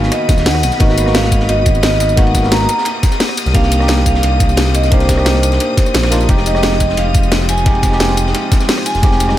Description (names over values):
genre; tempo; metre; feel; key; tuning
liquid drum and bass; 175 BPM; 4/4; straight; F minor; A4 = 439 Hz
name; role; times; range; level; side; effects
vibraphone with medium hard mallets; melody; 0.0-9.4 s; C5 to Bb5; -19 LUFS; right 1 dB; tape echo
tine electric piano; accompaniment; 0.0-9.4 s; G3 to G4; -19 LUFS; equal; tape echo
clear studio string section; sustained chords; 0.0-9.4 s; Eb3 to Eb6; -24 LUFS; left 3 dB; sidechain pumping
smooth synth bass; bass; 0.0-9.4 s; Eb1 to Eb2; -16 LUFS; equal; tube saturation
crunchy breakbeat drum kit; drums; 0.0-9.4 s; hi-hat, ride cymbal, snare drum; -25 LUFS; equal; high-pass filter on cymbals, high-pass filter on hats, high-pass filter on snare, high-pass filter on room, tape echo
drum and bass drum kit; drums; 0.1-9.4 s; hi-hat, rim click, snare drum, tambourine; -19 LUFS; equal; tape echo
electronic kick drum; drums; 0.3-9.1 s; none; -13 LUFS; equal; none
room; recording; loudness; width
light reverb; echo-heavy mix; -11 LUFS; side -13 dB against mid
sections
0.0-9.4 A section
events
none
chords
0.0 Abm7; 2.7 Cm7; 6.3 Fm7